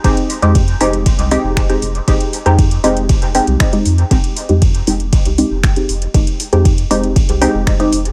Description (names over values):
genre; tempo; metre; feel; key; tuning
dub techno; 118 BPM; 4/4; straight; F minor; A4 = 438 Hz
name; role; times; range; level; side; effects
filtered dub chord stab; stabs; 0.0-8.0 s; Ab3 to G4; -18 LUFS; equal; chorus, phaser, sidechain pumping, dub echo
round analog bass; bass; 0.0-8.1 s; F1 to F2; -19 LUFS; equal; sidechain pumping
electronic kick drum; drums; 0.0-7.8 s; none; -16 LUFS; equal; none
soft vintage rhythm box; drums; 0.0-8.1 s; finger snaps, hi-hat, ride cymbal; -26 LUFS; equal; none
room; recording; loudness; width
digital ambience; none; -14 LUFS; mono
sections
0.0-8.1 A section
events
none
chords
0.0 Fm7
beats
| 0.04 0.55 1.06 1.57 | 2.08 2.59 3.09 3.60 | 4.11 4.62 5.13 5.64 | 6.14 6.65 7.16 7.67